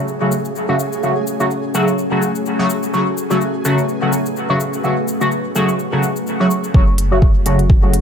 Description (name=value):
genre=dub techno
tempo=126 BPM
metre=4/4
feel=swing 56% on 16ths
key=F# minor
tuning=A4 = 440 Hz
part: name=deep dark ambient pad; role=sustained chords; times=0.0-8.0 s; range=A3 to C#5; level=-24 LUFS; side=left 2 dB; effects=chorus, built-in reverb, sidechain pumping
part: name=flickering grainy texture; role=texture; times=0.0-6.8 s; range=G#4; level=-28 LUFS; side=right 3 dB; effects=built-in reverb, sidechain pumping
part: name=electronic cabasa and hi-hat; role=drums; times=0.1-8.0 s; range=none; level=-29 LUFS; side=left 5 dB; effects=none
part: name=resonant sweep polysynth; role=stabs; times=0.2-7.9 s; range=C#3 to F#4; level=-17 LUFS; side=equal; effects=chorus, phaser, sidechain pumping, dub echo
part: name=soft dub sub bass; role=bass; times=6.7-8.0 s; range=F#1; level=-17 LUFS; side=equal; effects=sidechain pumping
part: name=electronic kick drum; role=drums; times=6.7-7.8 s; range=none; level=-12 LUFS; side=equal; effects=none
room=light reverb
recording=echo-heavy mix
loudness=-14 LUFS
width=side -7 dB against mid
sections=0.0-6.7 A section; 6.7-8.0 B section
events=none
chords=0.0 F#m